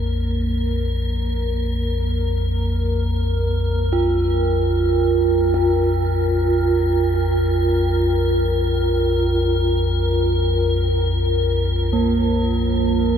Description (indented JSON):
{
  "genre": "dark ambient drone",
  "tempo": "free time",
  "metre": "none",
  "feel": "none",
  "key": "unclear",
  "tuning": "A4 = 440 Hz",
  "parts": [
    { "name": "deep rumbling drone", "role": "drone", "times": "0.0-13.2 s", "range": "Bb1 to F2", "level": "-20 LUFS", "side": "left 1 dB", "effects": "built-in reverb" },
    { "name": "icy glass pad", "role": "texture", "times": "0.0-13.2 s", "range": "Bb4", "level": "-25 LUFS", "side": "left 2 dB", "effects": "chorus, built-in reverb" },
    { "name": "quartz singing bowl", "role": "arpeggios", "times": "3.9-13.2 s", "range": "Bb3 to F4", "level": "-22 LUFS", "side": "right 3 dB", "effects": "diffuse ambient delay" }
  ],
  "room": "moderate huge ambient reverb, RT60 7.8 s",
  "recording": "none",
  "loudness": "-17 LUFS",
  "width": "side -8 dB against mid",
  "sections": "0.0-13.2 A section",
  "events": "filter sweep on synth drone 0.0-13.2",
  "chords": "0.0 Bb5"
}